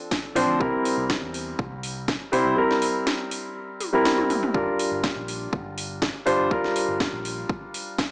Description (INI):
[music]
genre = nu-disco, nu disco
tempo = 122 BPM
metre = 4/4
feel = straight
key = G dorian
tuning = A4 = 436 Hz
[part]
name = warm concert grand piano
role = accompaniment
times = 0.0-8.1 s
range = F3 to C5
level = -23 LUFS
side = equal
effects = sidechain pumping, analog delay
[part]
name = electronic kick drum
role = drums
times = 0.1-8.1 s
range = none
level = -29 LUFS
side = equal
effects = studio reverb
[part]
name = house drum kit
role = drums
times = 0.1-8.1 s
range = hi-hat, snare drum, toms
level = -28 LUFS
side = equal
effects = studio reverb
[part]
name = picked electric bass with an envelope filter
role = bass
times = 0.4-7.4 s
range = G1 to E2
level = -37 LUFS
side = equal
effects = none
[sound]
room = light reverb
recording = dry, gritty hardware recording, cassette tape, small speaker sound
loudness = -22 LUFS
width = side -28 dB against mid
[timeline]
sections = 0.0-8.1 A section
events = kick drops out 2.6-4.5; drum fill 3.8-4.5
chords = 0.0 Dm7; 0.6 C7; 4.5 Gm7